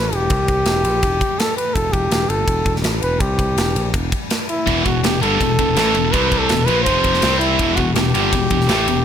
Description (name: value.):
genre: heavy metal.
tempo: 164 BPM.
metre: 4/4.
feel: straight.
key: E minor.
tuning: A4 = 440 Hz.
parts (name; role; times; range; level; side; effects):
warm flugelhorn; melody; 0.0-9.0 s; E4 to C5; -20 LUFS; equal; tape echo.
modern bright picked electric bass; bass; 0.0-9.0 s; E1 to C2; -22 LUFS; equal; none.
tight metal drum kit; drums; 0.1-9.0 s; kick drum, ride cymbal, snare drum; -21 LUFS; equal; none.
heavy high-gain guitar; riff; 4.7-9.0 s; E2 to C4; -21 LUFS; left 12 dB; distortion.
heavy high-gain guitar; riff; 4.7-9.0 s; E2 to C4; -20 LUFS; right 14 dB; distortion.
room: light reverb.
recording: none.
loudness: -15 LUFS.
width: side -8 dB against mid.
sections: 0.0-9.0 A section.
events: none.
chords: 0.3 C5; 0.7 Em; 3.2 C5; 3.6 Em; 6.1 C5; 6.5 E5; 6.9 F5; 7.2 C5; 7.6 Em.